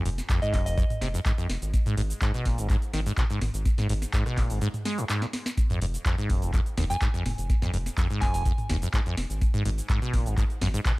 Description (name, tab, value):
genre	acid house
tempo	125 BPM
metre	4/4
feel	straight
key	F phrygian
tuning	A4 = 441 Hz
part	acid bass, saw	riff	0.0-10.9 s	Eb2 to Ab3	-29 LUFS	equal	wide subtle chorus, sidechain pumping
part	round analog bass	bass	0.1-10.8 s	Eb1 to Ab1	-31 LUFS	equal	sidechain pumping
part	booming analog drum machine	drums	0.1-11.0 s	handclaps, hi-hat, rim click, shaker, snare drum, toms	-34 LUFS	equal	none
part	electronic kick drum	drums	0.3-11.0 s	none	-26 LUFS	equal	none
part	soft synth bell	melody	0.4-0.9, 6.9-8.4 s	Eb5 to Ab5	-35 LUFS	right 1 dB	chorus, analog delay
room	little or no reverb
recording	dry, gritty hardware recording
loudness	-24 LUFS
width	side -21 dB against mid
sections	0.0-11.0 A section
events	break 4.6-5.6; drum fill 5.2-5.6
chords	0.0 Fm; 1.7 N.C.; 5.6 Fm; 9.4 Abm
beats	0.29 0.78 1.25 | 1.74 2.21 2.69 3.17 | 3.65 4.13 4.62 5.09 | 5.58 6.05 6.54 7.01 | 7.50 7.97 8.46 8.94 | 9.41 9.89 10.38 10.86